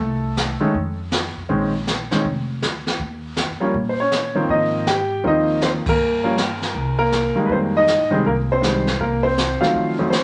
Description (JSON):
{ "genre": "jazz piano trio", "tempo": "160 BPM", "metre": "4/4", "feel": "swing 65% on 8ths", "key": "unclear", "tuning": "A4 = 439 Hz", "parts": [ { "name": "clear upright piano", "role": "melody", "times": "0.0-10.2 s", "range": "F2 to G5", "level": "-21 LUFS", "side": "equal", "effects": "none" }, { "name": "upright bass", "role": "bass", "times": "0.0-9.6 s", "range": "F1 to C3", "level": "-30 LUFS", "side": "equal", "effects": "none" }, { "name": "jazz brush drum kit", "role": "drums", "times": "0.0-10.2 s", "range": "brushed snare drum, hi-hat, kick drum, ride cymbal, snare drum", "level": "-27 LUFS", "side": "equal", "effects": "none" } ], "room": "wet studio reverb, RT60 0.8 s", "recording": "nothing above 10.6 kHz", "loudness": "-20 LUFS", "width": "mono", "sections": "0.0-10.2 A section", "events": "band accent 5.8", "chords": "0.0 N.C.; 1.5 Bbm11; 3.0 Eb7(no3); 4.5 Ab6; 6.0 Gm; 6.7 C5; 7.5 Fm9; 9.0 C7(no3)" }